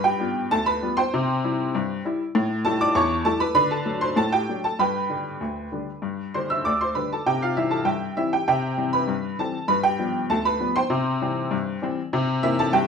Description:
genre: ragtime piano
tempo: 98 BPM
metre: 2/4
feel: straight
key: C major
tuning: A4 = 440 Hz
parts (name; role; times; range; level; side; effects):
- clear upright piano; solo; 0.0-12.9 s; D2 to E6; -21 LUFS; equal; none
room: wet studio reverb, RT60 0.7 s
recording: band playing live in one room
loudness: -21 LUFS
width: side -6 dB against mid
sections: 0.0-12.9 A section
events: none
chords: 0.0 G7; 1.1 C; 2.3 A7; 3.6 D7; 4.8 G; 7.2 C; 9.7 G7; 10.9 C; 12.1 C7

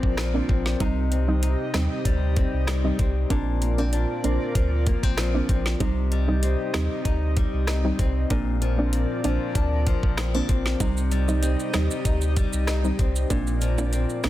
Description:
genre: dancehall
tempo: 96 BPM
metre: 4/4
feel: straight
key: C minor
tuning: A4 = 439 Hz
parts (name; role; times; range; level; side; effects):
- airy breathy pad; sustained chords; 0.0-14.3 s; C4 to Eb5; -32 LUFS; right 1 dB; chorus, sidechain pumping
- flamenco guitar; arpeggios; 0.0-14.3 s; Bb2 to Eb4; -30 LUFS; left 6 dB; none
- warm sub bass; bass; 0.0-14.3 s; Bb1 to Eb2; -24 LUFS; equal; none
- afro-pop drum kit; drums; 0.0-14.3 s; hi-hat, kick drum, rim click, snare drum; -25 LUFS; equal; none
- soft round pluck; accompaniment; 0.3-14.3 s; G3 to Eb4; -29 LUFS; right 2 dB; chorus
- maracas and timbales; percussion; 10.8-14.3 s; none; -37 LUFS; right 6 dB; none
room: digital ambience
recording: dense, heavily limited modern master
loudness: -21 LUFS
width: side -14 dB against mid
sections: 0.0-5.8 A section; 5.8-14.3 B section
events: none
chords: 0.0 Bbadd9; 0.8 Cm; 3.3 Bbadd9; 5.8 Cm; 8.3 Bbadd9; 10.8 Cm; 13.3 Bbadd9

